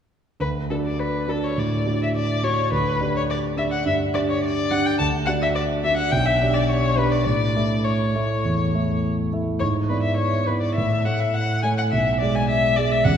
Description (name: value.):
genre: quick classical-period movement for piano quintet.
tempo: 104 BPM.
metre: 4/4.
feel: straight.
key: D major.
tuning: A4 = 440 Hz.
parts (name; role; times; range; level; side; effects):
rich violin; melody; 0.4-13.2 s; A4 to A5; -23 LUFS; left 3 dB; none.
dark concert grand piano; accompaniment; 0.4-13.2 s; A1 to E5; -21 LUFS; right 1 dB; none.
room: wet concert hall reverb, RT60 2.3 s.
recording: heard from further back in the room.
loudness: -19 LUFS.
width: side -8 dB against mid.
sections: 0.4-13.2 A section.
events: none.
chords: 0.4 D; 2.7 G5/D; 5.0 D; 6.1 G/B; 7.3 A; 9.6 E7/G#; 10.8 A; 11.9 G#dim/B.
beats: | 0.41 0.99 1.57 2.15 | 2.72 3.29 3.86 4.43 | 4.99 5.55 6.12 6.69 | 7.26 7.84 8.43 9.02 | 9.60 10.18 10.76 11.34 | 11.91 12.48 13.05.